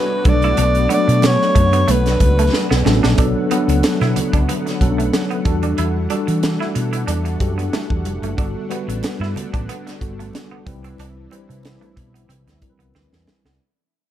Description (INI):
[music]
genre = polished 1980s jazz-funk pop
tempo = 92 BPM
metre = 4/4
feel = swing 54% on 16ths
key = B minor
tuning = A4 = 442 Hz
[part]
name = breathy alto saxophone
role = melody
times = 0.0-2.9 s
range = B4 to D5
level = -19 LUFS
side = left 1 dB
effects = tape echo
[part]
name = mellow tine electric piano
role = accompaniment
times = 0.0-13.6 s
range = F#3 to C5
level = -22 LUFS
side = left 1 dB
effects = medium stereo tremolo, analog chorus
[part]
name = warm analog pad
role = sustained chords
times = 0.0-13.6 s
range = D3 to F#5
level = -29 LUFS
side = equal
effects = chorus
[part]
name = clean electric guitar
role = riff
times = 0.0-13.6 s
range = A3 to E4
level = -28 LUFS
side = right 6 dB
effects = wide subtle chorus
[part]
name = crisp fusion drum kit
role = drums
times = 0.2-13.6 s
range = hi-hat, kick drum, snare drum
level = -20 LUFS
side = equal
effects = none
[part]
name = hollow-body short-scale fingered electric bass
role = bass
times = 0.3-13.6 s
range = E#1 to E3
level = -19 LUFS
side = equal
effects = none
[part]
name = congas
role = percussion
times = 0.3-13.4 s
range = none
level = -32 LUFS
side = right 6 dB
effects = none
[sound]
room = light reverb, small room ambience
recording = dark, warm production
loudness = -15 LUFS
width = side -11 dB against mid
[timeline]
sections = 0.0-3.2 A section; 3.2-13.6 B section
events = drum fill 2.5-3.2, 12.9-13.6; fade-out 3.2-13.6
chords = 0.3 Bm9; 3.2 Bm7; 5.5 Em11; 8.4 Gmaj9; 10.7 Cmaj7